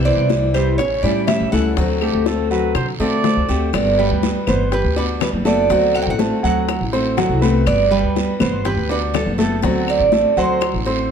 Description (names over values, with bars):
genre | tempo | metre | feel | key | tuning
latin, Cuban son and guajira | 122 BPM | 4/4 | straight | G major | A4 = 440 Hz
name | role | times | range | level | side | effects
picked steel-string acoustic guitar | accompaniment | 0.0-11.1 s | C3 to F#4 | -24 LUFS | left 7 dB | none
upright bass | bass | 0.0-11.1 s | F#1 to D3 | -21 LUFS | equal | none
Cuban tres | melody | 0.1-10.8 s | A4 to G5 | -20 LUFS | right 4 dB | plate reverb
clear concert grand piano | arpeggios | 0.1-11.1 s | F#3 to G6 | -22 LUFS | right 2 dB | none
congas | percussion | 0.1-11.1 s | none | -24 LUFS | left 4 dB | none
bongos | percussion | 0.3-11.1 s | none | -26 LUFS | left 10 dB | none
guiro | percussion | 0.3-11.1 s | none | -33 LUFS | right 6 dB | none
claves | percussion | 0.5-10.9 s | none | -32 LUFS | left 9 dB | none
clear trumpet | second line | 2.0-3.7 s | G4 to D5 | -25 LUFS | right 6 dB | none
room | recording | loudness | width
moderate large studio reverb, RT60 1.0 s | dark, warm production | -15 LUFS | side -7 dB against mid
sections
0.0-3.7 A section; 3.7-11.1 B section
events
none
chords
0.0 Cmaj7; 0.8 A7; 1.8 D7; 3.7 Gmaj7; 5.7 D7; 7.7 Gmaj7; 9.6 D7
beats
0.30 0.79 1.28 | 1.77 2.27 2.76 3.25 | 3.74 4.23 4.72 5.21 | 5.70 6.19 6.68 7.17 | 7.67 8.16 8.65 9.14 | 9.63 10.12 10.62 11.11